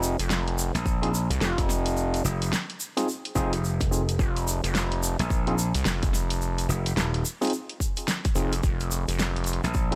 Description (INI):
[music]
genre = glitch hop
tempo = 108 BPM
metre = 4/4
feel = swing 61% on 16ths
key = F minor pentatonic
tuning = A4 = 442 Hz
[part]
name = gritty driven synth bass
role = bass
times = 0.0-9.6 s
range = F1 to C2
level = -29 LUFS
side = equal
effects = tube saturation
[part]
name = egg shaker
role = percussion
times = 0.0-9.9 s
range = none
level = -37 LUFS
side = equal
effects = none
[part]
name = pop drum kit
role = drums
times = 0.2-10.0 s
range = hi-hat, snare drum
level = -33 LUFS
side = equal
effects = studio reverb
[part]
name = gritty slap bass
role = bass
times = 0.7-10.0 s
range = Eb1 to Bb1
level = -28 LUFS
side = equal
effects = overdrive
[part]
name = electronic kick drum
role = drums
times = 0.9-9.9 s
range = none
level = -30 LUFS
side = equal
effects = studio reverb
[part]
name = overdriven tine electric piano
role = stabs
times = 1.0-10.0 s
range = C4 to Ab4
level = -33 LUFS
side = equal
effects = vintage 12-bit sampler grit, sidechain pumping, digital delay
[sound]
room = digital ambience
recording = none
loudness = -26 LUFS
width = mono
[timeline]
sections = 0.0-10.0 A section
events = none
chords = none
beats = 0.30 0.86 1.41 | 1.97 2.52 3.08 3.63 | 4.19 4.75 5.30 5.86 | 6.41 6.97 7.52 8.08 | 8.63 9.19 9.74